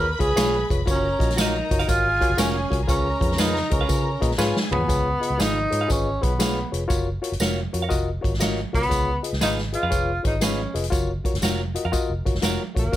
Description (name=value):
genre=uptempo 1960s-style soul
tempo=119 BPM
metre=4/4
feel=swing 66% on 8ths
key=Db mixolydian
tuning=A4 = 440 Hz
part: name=mellow tenor saxophone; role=melody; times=0.0-13.0 s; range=Bb3 to Bb4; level=-24 LUFS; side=equal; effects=none
part: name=rich studio string section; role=second line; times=0.0-4.9, 12.9-13.0 s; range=Ab4 to Cb6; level=-32 LUFS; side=left 2 dB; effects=none
part: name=reed electric piano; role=accompaniment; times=0.0-13.0 s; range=Db3 to Eb5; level=-28 LUFS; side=left 4 dB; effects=overdrive
part: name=vintage muted fingered electric bass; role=bass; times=0.0-13.0 s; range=F1 to Db3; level=-27 LUFS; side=equal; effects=none
part: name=swinging big-band drum kit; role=drums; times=0.2-13.0 s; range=hi-hat, kick drum, snare drum, toms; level=-25 LUFS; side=equal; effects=none
part: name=clean electric guitar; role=stabs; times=0.4-12.6 s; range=Gb4 to F5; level=-30 LUFS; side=right 7 dB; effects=none
part: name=tambourine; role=percussion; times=0.4-13.0 s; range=none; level=-34 LUFS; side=right 3 dB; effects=none
room=light reverb, studio reverb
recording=none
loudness=-20 LUFS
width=side -13 dB against mid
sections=0.0-4.9 A section; 4.9-13.0 B section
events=drum fill 4.4-4.9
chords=0.0 Db7; 0.9 Gbmaj7; 2.9 Db7; 6.9 Gbmaj7; 8.9 Db7; 10.9 Gbmaj7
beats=0.37 | 0.87 1.37 1.88 2.38 | 2.88 3.38 3.89 4.39 | 4.89 5.39 5.90 6.40 | 6.90 7.40 7.91 8.41 | 8.91 9.41 9.92 10.42 | 10.92 11.43 11.93 12.43 | 12.93